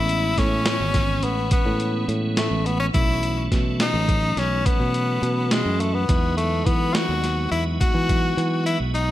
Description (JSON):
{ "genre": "progressive instrumental, band music in an uneven meter", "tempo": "210 BPM (eighths)", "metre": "11/8", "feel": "straight", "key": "unclear", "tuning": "A4 = 440 Hz", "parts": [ { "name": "edgy tenor saxophone", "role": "melody", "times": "0.0-9.1 s", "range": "G#3 to F#4", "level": "-24 LUFS", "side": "left 3 dB", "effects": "digital delay" }, { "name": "tonewheel organ", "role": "accompaniment", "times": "0.0-9.1 s", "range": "E3 to D#4", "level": "-29 LUFS", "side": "right 3 dB", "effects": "chorus vibrato" }, { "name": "fingered electric bass", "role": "bass", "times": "0.0-9.1 s", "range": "G#1 to E3", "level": "-24 LUFS", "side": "equal", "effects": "none" }, { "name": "boom bap sampler-style drum kit", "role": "drums", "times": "0.1-9.1 s", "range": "hi-hat, kick drum, snare drum", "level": "-23 LUFS", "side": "equal", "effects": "gated reverb" } ], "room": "light reverb", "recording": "bright 1980s-style digital production", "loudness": "-19 LUFS", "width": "side -14 dB against mid", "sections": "0.0-9.1 A section", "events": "kick and snare drop out 8.7-9.1", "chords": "0.0 Amaj9; 2.9 B9sus4; 6.1 Emaj9", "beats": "0.09 0.38 0.66 0.94 1.23 1.52 1.80 2.09 2.37 2.66 | 2.94 3.23 3.51 3.80 4.08 4.37 4.66 4.94 5.23 5.51 5.80 | 6.08 6.37 6.66 6.94 7.23 7.51 7.80 8.09 8.37 8.66 8.95" }